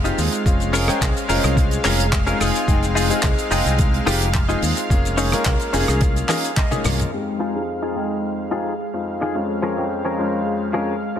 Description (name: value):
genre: nu-disco, nu disco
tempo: 108 BPM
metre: 4/4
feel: straight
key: F minor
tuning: A4 = 440 Hz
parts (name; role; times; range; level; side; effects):
- bright grand piano; accompaniment; 0.0-11.2 s; F2 to G5; -25 LUFS; left 1 dB; sidechain pumping, low-pass filter, dub echo
- lush unison pad; sustained chords; 0.0-11.2 s; Ab3 to F5; -26 LUFS; equal; chorus, sidechain pumping
- direct-recorded clean electric guitar; riff; 0.0-11.2 s; F3 to Ab5; -25 LUFS; left 2 dB; analog chorus, low-pass filter
- modern bright fingered electric bass; bass; 0.0-7.0 s; F1 to Eb2; -22 LUFS; equal; tube saturation, sidechain pumping
- damped 70s drum kit; drums; 0.1-9.3 s; handclaps, hi-hat, rim click, shaker, toms; -24 LUFS; right 1 dB; low-pass filter on hats, low-pass filter on toms, low-pass filter on snare, low-pass filter on perc, low-pass filter on room
- electronic kick drum; drums; 0.5-6.7 s; none; -20 LUFS; equal; none
room: light reverb, small room ambience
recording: none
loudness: -18 LUFS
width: side -9 dB against mid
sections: 0.0-7.1 A section; 7.1-11.2 B section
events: clean electric guitar fill 6.0-7.1; drum fill 6.3-7.1; filter sweep on clean electric guitar 7.1-11.2; filter sweep on grand piano 7.1-11.2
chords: 0.5 Bbm7/F; 2.4 Fm7; 4.9 Eb7sus4/F; 7.1 Fm7; 9.3 Bbm7/F